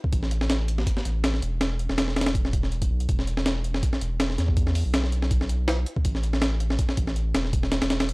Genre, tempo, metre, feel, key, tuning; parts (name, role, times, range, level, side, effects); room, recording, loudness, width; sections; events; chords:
drum and bass, jungle; 162 BPM; 4/4; swing 54% on 16ths; A4 = 440 Hz
breakbeat sampler-style drum kit; drums; 0.0-8.1 s; hi-hat, kick drum, snare drum; -24 LUFS; equal; studio reverb
saturated sub bass; bass; 0.1-8.1 s; E1 to E2; -26 LUFS; equal
little or no reverb; dry, gritty hardware recording, cassette tape; -22 LUFS; side -26 dB against mid
0.0-8.1 A section